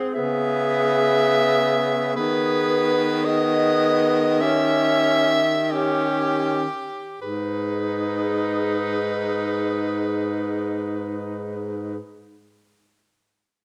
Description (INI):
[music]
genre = classical, lyrical piece for single-reed quartet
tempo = 39-61 BPM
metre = 4/4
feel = rubato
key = G# minor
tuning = A4 = 440 Hz
[part]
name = clear clarinet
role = second line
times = 0.0-12.0 s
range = G4 to G#4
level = -30 LUFS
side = equal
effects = none
[part]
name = warm tenor saxophone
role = accompaniment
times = 0.0-12.0 s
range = B3 to D#4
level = -28 LUFS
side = equal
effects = none
[part]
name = edgy soprano saxophone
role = melody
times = 0.1-12.0 s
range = G4 to E5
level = -26 LUFS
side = equal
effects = none
[part]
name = clear baritone saxophone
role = bass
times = 0.2-12.0 s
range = G#2 to D#3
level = -28 LUFS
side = equal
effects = none
[sound]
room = moderate recital hall reverb, RT60 1.5 s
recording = none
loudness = -22 LUFS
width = mono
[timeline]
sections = 0.0-7.2 A section; 7.2-13.0 B section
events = slowing down 0.0-7.2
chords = 0.2 C#m7; 2.2 G#m/D#; 4.4 D#7b9; 7.2 G#m